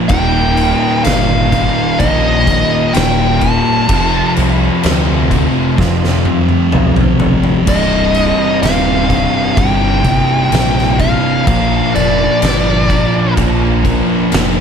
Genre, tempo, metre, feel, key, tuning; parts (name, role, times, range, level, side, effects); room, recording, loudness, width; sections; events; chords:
stoner and doom metal; 63 BPM; 4/4; straight; C dorian; A4 = 439 Hz
distorted electric guitar; riff; 0.0-14.6 s; C2 to Bb4; -20 LUFS; left 1 dB; distortion
thick fuzz guitar; riff; 0.0-14.6 s; C2 to Bb3; -18 LUFS; left 11 dB; distortion
thick fuzz guitar; riff; 0.0-14.6 s; C2 to Bb3; -18 LUFS; right 10 dB; distortion
fuzz lead guitar; melody; 0.1-13.3 s; D5 to A5; -16 LUFS; equal; wah, distortion, slapback echo
growling picked electric bass; bass; 0.1-14.6 s; C1 to F2; -17 LUFS; equal; overdrive
oversized low-tuned drum kit; drums; 0.1-14.6 s; crash cymbal, kick drum, snare drum, toms; -17 LUFS; left 1 dB
light reverb; -10 LUFS; side -7 dB against mid
0.0-14.6 A section
drum fill 5.8-7.7
0.1 Eb; 3.9 F; 7.7 Cm; 11.5 Bb